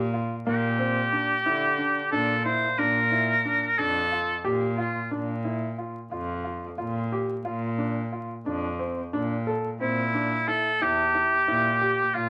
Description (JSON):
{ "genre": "contemporary instrumental, chamber music in an uneven meter", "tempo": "180 BPM (eighths)", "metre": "7/8", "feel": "straight", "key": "Bb lydian", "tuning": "A4 = 437 Hz", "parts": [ { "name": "rich cello", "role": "bass", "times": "0.0-12.3 s", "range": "E2 to D3", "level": "-33 LUFS", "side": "equal", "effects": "none" }, { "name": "warm concert grand piano", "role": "arpeggios", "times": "0.1-12.3 s", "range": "Bb3 to A4", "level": "-33 LUFS", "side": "equal", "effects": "none" }, { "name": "clear oboe", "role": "second line", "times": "0.5-5.1, 9.8-12.3 s", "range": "E4 to C5", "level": "-26 LUFS", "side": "equal", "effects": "none" } ], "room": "moderate studio reverb, RT60 0.5 s", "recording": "vinyl crackle", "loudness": "-26 LUFS", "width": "mono", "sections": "0.0-5.1 A section; 5.1-12.3 B section", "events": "none", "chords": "0.5 Gm/Bb; 2.8 Bbmaj7; 5.1 Bb; 9.8 Edim", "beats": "0.13 | 0.46 0.79 1.13 1.46 1.79 2.12 2.46 | 2.79 3.12 3.45 3.79 4.12 4.45 4.79 | 5.12 5.45 5.79 6.12 6.46 6.79 7.12 | 7.46 7.79 8.13 8.46 8.79 9.13 9.46 | 9.80 10.13 10.47 10.80 11.14 11.47 11.81 | 12.14" }